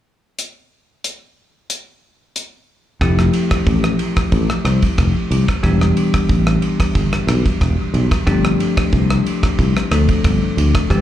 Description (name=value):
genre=electric jazz fusion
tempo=91 BPM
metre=4/4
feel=straight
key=F lydian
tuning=A4 = 440 Hz
part: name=damped 70s drum kit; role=drums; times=0.4-11.0 s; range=hi-hat, kick drum, ride cymbal, rim click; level=-19 LUFS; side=right 1 dB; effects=none
part: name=bell-like tine electric piano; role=accompaniment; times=3.0-11.0 s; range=E3 to A4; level=-20 LUFS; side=left 2 dB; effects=slapback echo
part: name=sustaining fretless electric bass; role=bass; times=3.0-11.0 s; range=E1 to D2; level=-16 LUFS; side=equal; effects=none
room=little or no reverb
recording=live gig heard through the venue's PA, club reverb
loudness=-14 LUFS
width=side -12 dB against mid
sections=0.4-3.0 A section; 3.0-11.0 B section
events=none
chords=0.4 N.C.; 3.0 Fmaj9; 5.6 Em7; 8.3 G9sus4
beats=| 0.38 1.04 1.70 2.35 | 3.01 3.67 4.32 4.98 | 5.64 6.30 6.95 7.61 | 8.27 8.93 9.58 10.24 | 10.90